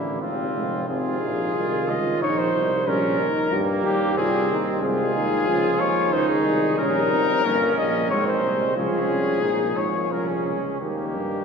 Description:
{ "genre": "classical, brass quintet", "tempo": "91 BPM", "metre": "3/4", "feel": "rubato", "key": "Ab major from 4.8 s", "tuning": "A4 = 440 Hz", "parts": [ { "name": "mellow cornet", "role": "melody", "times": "0.0-11.4 s", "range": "E4 to Eb5", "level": "-24 LUFS", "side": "left 4 dB", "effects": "none" }, { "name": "warm trumpet", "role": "second line", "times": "0.0-11.4 s", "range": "Bb3 to F4", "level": "-29 LUFS", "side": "right 5 dB", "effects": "none" }, { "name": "mellow French horn", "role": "accompaniment", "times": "0.0-11.4 s", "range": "F3 to G4", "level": "-28 LUFS", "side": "left 1 dB", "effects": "none" }, { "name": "warm euphonium", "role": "accompaniment", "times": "0.0-11.4 s", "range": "C3 to Bb3", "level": "-30 LUFS", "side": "right 4 dB", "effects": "none" }, { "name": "clear tuba", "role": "bass", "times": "0.0-11.4 s", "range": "F1 to G2", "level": "-28 LUFS", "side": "right 2 dB", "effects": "none" } ], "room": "wet cathedral reverb, RT60 5.0 s", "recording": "minimal, uncompressed stereo recording", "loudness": "-20 LUFS", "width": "side -6 dB against mid", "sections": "0.0-11.4 A section", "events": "none", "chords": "0.2 Fm/Ab; 0.9 Ab; 2.9 Gdim/Bb; 4.2 Ab/C; 6.8 Eb7; 8.1 Ab; 8.8 Db; 10.8 Eb", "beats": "0.22 | 0.88 1.55 2.22 | 2.88 3.53 4.18 | 4.83 5.48 6.13 | 6.79 7.45 8.11 | 8.77 9.43 10.11 | 10.81" }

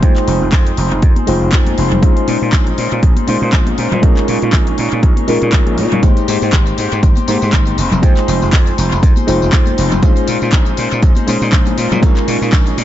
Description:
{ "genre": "filtered disco house", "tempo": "120 BPM", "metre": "4/4", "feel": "swing 56% on 16ths", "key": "unclear", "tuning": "A4 = 441 Hz", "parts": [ { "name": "reed electric piano", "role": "accompaniment", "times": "0.0-12.8 s", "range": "Ab3 to G5", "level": "-18 LUFS", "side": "equal", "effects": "phaser, vintage 12-bit sampler grit, sidechain pumping, low-pass filter" }, { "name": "electric guitar at the edge of break-up", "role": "riff", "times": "0.0-12.8 s", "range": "Bb3 to Db5", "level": "-23 LUFS", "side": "left 2 dB", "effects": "vintage 12-bit sampler grit, sidechain pumping, low-pass filter, tape echo" }, { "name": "gritty slap bass", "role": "bass", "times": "0.0-12.8 s", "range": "F1 to Bb2", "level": "-18 LUFS", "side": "equal", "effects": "overdrive, sidechain pumping, low-pass filter" }, { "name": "electronic kick drum", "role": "drums", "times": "0.0-12.6 s", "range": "none", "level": "-11 LUFS", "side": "equal", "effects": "overdrive" }, { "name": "house drum kit", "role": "drums", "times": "0.0-12.8 s", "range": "handclaps, hi-hat, tambourine", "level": "-23 LUFS", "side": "left 2 dB", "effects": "overdrive, sidechain pumping on hats, sidechain pumping on perc, tape echo" }, { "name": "tambourine and congas", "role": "percussion", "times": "0.0-12.8 s", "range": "none", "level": "-23 LUFS", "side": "left 4 dB", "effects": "sidechain pumping on perc, low-pass filter on perc, tape echo" } ], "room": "little or no reverb", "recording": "echo-heavy mix, nothing above 7.8 kHz", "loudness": "-10 LUFS", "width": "side -12 dB against mid", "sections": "0.0-12.8 A section", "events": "filter sweep 0.0-12.8", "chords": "0.0 Fm7; 2.0 Bbm11; 4.0 Eb7sus4/Bb; 6.0 Abmaj7; 7.8 Fm7; 10.0 Bbm11; 12.0 Eb7sus4/Bb", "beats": "| 0.03 0.53 1.03 1.53 | 2.03 2.53 3.03 3.53 | 4.03 4.53 5.03 5.53 | 6.03 6.53 7.03 7.53 | 8.03 8.53 9.03 9.53 | 10.03 10.53 11.03 11.53 | 12.03 12.53" }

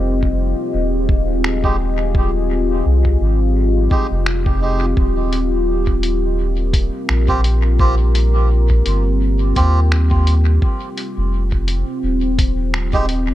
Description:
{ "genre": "ambient dub", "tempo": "85 BPM", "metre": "4/4", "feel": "swing 56% on 16ths", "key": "F minor", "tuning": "A4 = 440 Hz", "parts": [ { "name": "deep dark ambient pad", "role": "sustained chords", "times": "0.0-13.3 s", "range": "C4 to Eb5", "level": "-21 LUFS", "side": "left 2 dB", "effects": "chorus, built-in reverb" }, { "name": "soft dub sub bass", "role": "bass", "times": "0.0-13.3 s", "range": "Eb1 to Eb2", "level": "-16 LUFS", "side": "equal", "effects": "none" }, { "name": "electronic kick drum", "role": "drums", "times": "0.2-13.1 s", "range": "none", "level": "-18 LUFS", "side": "equal", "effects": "none" }, { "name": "lo-fi sampler-style drum kit", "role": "drums", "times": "1.4-13.2 s", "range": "finger snaps, hi-hat", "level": "-26 LUFS", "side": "left 1 dB", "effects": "dub echo" }, { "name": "melodica", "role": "stabs", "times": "1.6-13.1 s", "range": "Ab3 to G4", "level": "-25 LUFS", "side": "right 2 dB", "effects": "vintage 12-bit sampler grit, low-pass filter, dub echo" } ], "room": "light reverb", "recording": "echo-heavy mix", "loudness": "-14 LUFS", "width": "side -14 dB against mid", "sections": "0.0-13.3 A section", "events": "none", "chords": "0.0 Fm9; 5.0 Eb69; 10.6 Fm9", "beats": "0.03 0.74 1.44 | 2.15 2.85 3.56 4.27 | 4.97 5.68 6.38 7.09 | 7.80 8.50 9.21 9.91 | 10.62 11.33 12.03 12.74" }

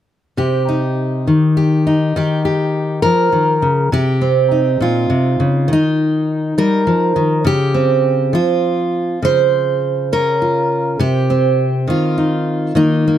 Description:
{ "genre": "folk, solo fingerstyle acoustic guitar", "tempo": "68 BPM (dotted quarters)", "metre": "6/8", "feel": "straight", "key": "unclear", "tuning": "A4 = 440 Hz", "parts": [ { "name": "fingerpicked steel-string acoustic guitar", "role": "solo", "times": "0.4-13.2 s", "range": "Bb2 to C5", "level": "-13 LUFS", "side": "equal", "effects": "none" } ], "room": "light reverb", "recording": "close, detailed microphones", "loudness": "-13 LUFS", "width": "side -10 dB against mid", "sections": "0.4-3.9 A section; 3.9-13.2 B section", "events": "none", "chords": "0.4 Cm; 2.1 Eb; 3.9 Cm; 5.7 Eb; 7.5 Bbmadd9/Db; 11.0 Cm", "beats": "| 0.37 1.26 | 2.14 3.03 | 3.92 4.80 | 5.69 6.57 | 7.46 8.35 | 9.23 10.12 | 11.00 11.89 | 12.77" }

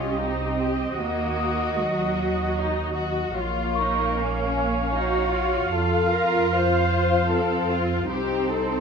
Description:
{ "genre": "cinematic, suspense film score", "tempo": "76 BPM", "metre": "3/4", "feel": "straight", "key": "Bb harmonic minor", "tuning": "A4 = 440 Hz", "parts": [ { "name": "muted chamber violin section", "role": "second line", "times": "0.0-8.8 s", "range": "Db4 to C5", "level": "-27 LUFS", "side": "left 7 dB", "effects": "none" }, { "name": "muted studio viola section", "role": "accompaniment", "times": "0.0-8.8 s", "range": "Eb4 to F5", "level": "-26 LUFS", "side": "right 1 dB", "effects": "none" }, { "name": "muted studio cello section", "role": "bass", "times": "0.0-8.8 s", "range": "Gb3 to Gb4", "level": "-28 LUFS", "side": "right 4 dB", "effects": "none" }, { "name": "muted studio double bass section", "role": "bass", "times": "0.0-8.8 s", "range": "Bb1 to F2", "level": "-28 LUFS", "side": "right 2 dB", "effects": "none" }, { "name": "large celesta", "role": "texture", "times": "1.4-8.1 s", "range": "Db6 to Eb6", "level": "-30 LUFS", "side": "equal", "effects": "none" } ], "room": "wet recital hall reverb, RT60 1.6 s", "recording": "minimal, uncompressed stereo recording", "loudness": "-21 LUFS", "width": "side -6 dB against mid", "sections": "0.0-8.8 A section", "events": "none", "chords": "0.0 Cm; 1.0 Ebm; 3.4 Bbm; 5.7 F5; 8.1 Cm", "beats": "0.21 | 1.00 1.79 2.58 | 3.37 4.16 4.95 | 5.74 6.53 7.32 | 8.11" }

